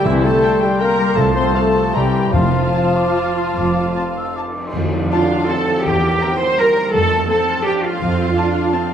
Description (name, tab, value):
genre	classical, orchestral ballroom waltz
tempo	141-178 BPM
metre	3/4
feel	rubato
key	F major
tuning	A4 = 441 Hz
part	muted symphonic violin section	second line	0.0-8.9 s	E5 to C6	-26 LUFS	left 2 dB	none
part	mellow bassoon	accompaniment	0.0-4.6 s	E3 to G3	-25 LUFS	right 2 dB	none
part	muted symphonic viola section	accompaniment	0.0-8.9 s	G3 to C5	-22 LUFS	equal	none
part	warm French horn section	sustained chords	0.0-4.4 s	E3 to C4	-22 LUFS	left 2 dB	none
part	concert harp	arpeggios	0.0-8.9 s	C3 to F6	-24 LUFS	left 5 dB	none
part	mellow hollow silver concert flute	second line	0.1-4.8 s	A5 to E6	-27 LUFS	left 2 dB	none
part	warm clarinet	second line	0.1-4.5 s	G5 to Bb5	-27 LUFS	left 1 dB	none
part	muted symphonic cello section	bass	0.1-8.9 s	C2 to C5	-19 LUFS	right 2 dB	none
part	muted symphonic double bass section	bass	0.1-8.3 s	F1 to F2	-24 LUFS	right 3 dB	none
part	timpani	percussion	0.1-2.9 s	F2 to C3	-24 LUFS	right 1 dB	none
part	muted symphonic violin section	melody	0.4-8.8 s	F5 to Bb5	-31 LUFS	left 1 dB	none
part	cymbal swell and tam-tam	percussion	2.3-6.2 s	none	-27 LUFS	left 1 dB	none
room	moderate scoring stage reverb, RT60 2.0 s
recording	dark, warm production, nothing above 10.3 kHz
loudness	-14 LUFS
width	side -9 dB against mid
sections	0.0-4.8 A section; 4.8-8.9 B section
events	band accent 4.8-5.1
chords	0.1 C5; 1.2 F/C; 1.9 C7; 2.3 F; 5.9 C7/E; 6.9 F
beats	| 0.06 0.43 0.81 | 1.17 1.55 1.95 | 2.34 2.74 3.17 | 3.57 3.97 4.38 | 4.76 5.12 5.50 | 5.85 6.21 6.58 | 6.93 7.29 7.66 | 8.01 8.36 8.74